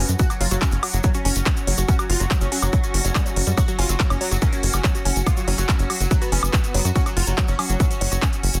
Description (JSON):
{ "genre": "psychedelic trance", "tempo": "142 BPM", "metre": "4/4", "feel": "straight", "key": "unclear", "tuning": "A4 = 440 Hz", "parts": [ { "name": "supersaw stab", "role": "melody", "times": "0.0-8.6 s", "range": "F#3 to F#4", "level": "-32 LUFS", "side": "equal", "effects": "phaser, cassette tape, sidechain pumping, dub echo" }, { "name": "vowel-sweep wobble bass", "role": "second line", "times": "0.0-0.1, 4.4-5.9 s", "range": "F#3 to A#3", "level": "-42 LUFS", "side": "equal", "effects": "none" }, { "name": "evolving wavetable pad", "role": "sustained chords", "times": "0.0-8.6 s", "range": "F#4", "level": "-35 LUFS", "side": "equal", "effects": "chorus, built-in reverb, sidechain pumping" }, { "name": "woody wave-folded pluck", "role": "riff", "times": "0.0-8.3 s", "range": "F#3 to F#4", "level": "-34 LUFS", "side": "equal", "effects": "chorus, cassette tape, sidechain pumping, dub echo" }, { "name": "tight sequencer bass", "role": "bass", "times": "0.0-8.6 s", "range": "F#1 to F#2", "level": "-24 LUFS", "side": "equal", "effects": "none" }, { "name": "techno drum kit", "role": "drums", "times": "0.1-8.6 s", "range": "handclaps, hi-hat, woodblock", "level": "-28 LUFS", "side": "equal", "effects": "none" }, { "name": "tube shaker", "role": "percussion", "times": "0.1-8.6 s", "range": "none", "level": "-35 LUFS", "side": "equal", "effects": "none" }, { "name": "electronic kick drum", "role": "drums", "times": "0.2-8.3 s", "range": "none", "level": "-23 LUFS", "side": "equal", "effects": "none" }, { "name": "zap", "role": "sound effects", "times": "2.9-3.0 s", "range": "none", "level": "-41 LUFS", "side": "equal", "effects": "none" } ], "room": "digital ambience", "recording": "dense, heavily limited modern master", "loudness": "-21 LUFS", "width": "mono", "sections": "0.0-8.6 A section", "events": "none", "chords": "0.0 F#5", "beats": "| 0.20 0.62 1.04 1.46 | 1.89 2.31 2.73 3.15 | 3.58 4.00 4.42 4.84 | 5.26 5.69 6.11 6.53 | 6.96 7.38 7.80 8.22" }